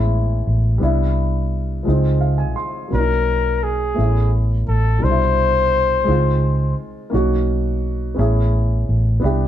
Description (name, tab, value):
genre	slow six-eight R&B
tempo	57 BPM (dotted quarters)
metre	6/8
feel	straight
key	unclear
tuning	A4 = 443 Hz
part	dark baby grand piano	accompaniment	0.0-9.5 s	B2 to B#5	-23 LUFS	left 1 dB	none
part	vintage muted fingered electric bass	bass	0.0-9.5 s	A1 to C#2	-18 LUFS	equal	none
part	warm flugelhorn	melody	2.9-6.8 s	G#4 to C5	-19 LUFS	left 3 dB	none
room	moderate studio reverb, RT60 0.8 s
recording	band playing live in one room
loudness	-16 LUFS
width	side -11 dB against mid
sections	0.0-9.5 A section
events	grand piano fill 1.9-2.9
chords	0.0 Amaj9; 0.8 Cmaj9; 1.9 C#maj9; 2.9 Bmaj9; 4.0 Aadd9; 5.0 Cmaj9; 6.1 C#maj9; 7.1 Bmaj9; 8.2 Amaj9